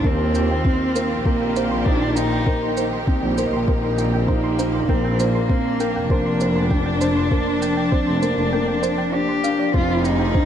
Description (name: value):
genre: piano and strings electronica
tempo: 99 BPM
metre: 4/4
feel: straight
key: unclear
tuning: A4 = 440 Hz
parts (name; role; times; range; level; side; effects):
- rich cello; melody; 0.0-10.5 s; Bb3 to G4; -25 LUFS; left 1 dB; tape echo
- clear symphonic string section; sustained chords; 0.0-10.5 s; Eb3 to Ab4; -28 LUFS; right 1 dB; sidechain pumping
- bright studio double bass section; bass; 0.0-10.4 s; F1 to Eb2; -24 LUFS; equal; sidechain pumping
- electronic kick drum; drums; 0.0-10.5 s; none; -20 LUFS; equal; none
- soft round pluck; arpeggios; 0.1-10.4 s; C5 to C6; -29 LUFS; right 3 dB; chorus, cassette tape, sidechain pumping, tape echo
- felt-muted upright piano; riff; 0.1-10.5 s; Bb3 to Eb4; -23 LUFS; equal; tape echo
- shaker; drums; 0.3-10.2 s; none; -37 LUFS; right 5 dB; none
room: wet cathedral reverb, RT60 5.8 s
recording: dreamy mix soaked in reverb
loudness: -18 LUFS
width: side -9 dB against mid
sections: 0.0-10.5 A section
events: none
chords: 0.0 Ebadd9; 4.9 Bb; 9.7 Fm7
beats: | 0.04 0.65 1.25 1.86 | 2.47 3.07 3.68 4.29 | 4.89 5.50 6.10 6.71 | 7.32 7.92 8.53 9.13 | 9.74 10.35